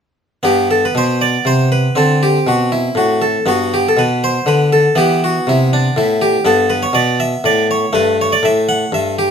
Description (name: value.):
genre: classical, baroque-style suite movement for harpsichord.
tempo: 120 BPM.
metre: 3/4.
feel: rubato.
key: G major.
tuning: A4 = 439 Hz.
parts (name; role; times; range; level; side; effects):
harpsichord; solo; 0.4-9.3 s; G2 to F#5; -12 LUFS; equal; none.
room: moderate studio reverb, RT60 0.6 s.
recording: none.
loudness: -12 LUFS.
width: side -7 dB against mid.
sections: 0.4-9.3 A section.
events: none.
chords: 0.4 G; 2.0 D5; 3.5 G; 5.0 E5; 6.4 G69; 7.9 Gmaj13.